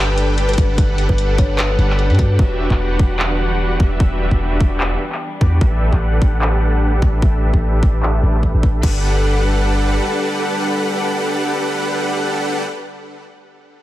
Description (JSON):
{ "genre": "future bass", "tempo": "149 BPM", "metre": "4/4", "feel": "swing 55% on 16ths, half-time", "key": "G major", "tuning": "A4 = 440 Hz", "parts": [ { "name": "warm studio string section", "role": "sustained chords", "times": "0.0-12.6 s", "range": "E3 to F#5", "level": "-28 LUFS", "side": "left 1 dB", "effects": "sidechain pumping, low-pass filter" }, { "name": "dense compressed supersaw", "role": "riff", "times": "0.0-12.6 s", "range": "D4 to G5", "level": "-21 LUFS", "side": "equal", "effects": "sidechain pumping, low-pass filter, digital delay" }, { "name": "warm 808-style bass", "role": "bass", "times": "0.0-10.0 s", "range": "E1 to G2", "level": "-17 LUFS", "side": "equal", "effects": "sidechain pumping" }, { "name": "trap drum kit", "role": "drums", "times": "0.2-8.9 s", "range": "crash cymbal, handclaps, hi-hat", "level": "-24 LUFS", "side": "equal", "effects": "low-pass filter on hats, studio reverb, low-pass filter on snare, low-pass filter on cymbals" }, { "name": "kalimba", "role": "melody", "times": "0.5-2.3 s", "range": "F#4 to C#5", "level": "-26 LUFS", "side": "left 1 dB", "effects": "sidechain pumping, tape echo" }, { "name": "electronic kick drum", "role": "drums", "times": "0.6-8.9 s", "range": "none", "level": "-15 LUFS", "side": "equal", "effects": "studio reverb" } ], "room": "light reverb, digital ambience", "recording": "none", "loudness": "-14 LUFS", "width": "side -15 dB against mid", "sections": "0.0-8.8 A section; 8.8-12.1 B section", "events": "filter sweep on drum 0.0-8.8; filter sweep on supersaw synth 0.0-8.8; filter sweep on string section 0.0-8.8", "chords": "0.0 Gmaj9; 2.4 Em9; 5.6 A9sus4; 8.8 Gmaj9", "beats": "0.38 | 0.78 1.18 1.58 1.99 | 2.39 2.79 3.19 3.60 | 4.00 4.40 4.81 5.21 | 5.61 6.01 6.42 6.82 | 7.22 7.62 8.03 8.43 | 8.83 9.24 9.64 10.04 | 10.44 10.85 11.25 11.65" }